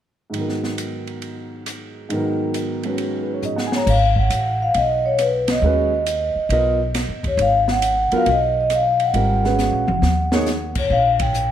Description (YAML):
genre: modal jazz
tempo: 136 BPM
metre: 4/4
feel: swing 67% on 8ths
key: G# dorian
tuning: A4 = 440 Hz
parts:
  - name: dark upright piano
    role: accompaniment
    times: 0.3-10.5 s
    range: G#2 to A#5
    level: -23 LUFS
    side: right 1 dB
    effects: wide subtle chorus
  - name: open jazz drum kit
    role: drums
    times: 0.3-11.5 s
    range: crash cymbal, hi-hat, kick drum, ride cymbal, rim click, snare drum, toms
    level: -27 LUFS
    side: equal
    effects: none
  - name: vibraphone with soft mallets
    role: melody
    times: 3.7-11.5 s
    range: B4 to G5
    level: -19 LUFS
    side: left 1 dB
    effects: analog delay
  - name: upright bass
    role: bass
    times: 3.9-11.5 s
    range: F#1 to F#2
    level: -22 LUFS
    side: equal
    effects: none
room: wet plate reverb, RT60 1.1 s, small room ambience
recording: dreamy mix soaked in reverb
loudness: -17 LUFS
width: side -10 dB against mid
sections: 0.3-3.9 A section; 3.9-11.5 B section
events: drum fill 3.4-3.9, 9.6-10.5; band accent 5.4, 11.1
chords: 0.3 G#m9; 10.9 A#5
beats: | 0.34 0.78 1.23 1.67 | 2.11 2.55 2.99 3.43 | 3.87 4.31 4.75 5.19 | 5.63 6.07 6.51 6.95 | 7.39 7.83 8.27 8.71 | 9.15 9.59 10.03 10.47 | 10.91 11.35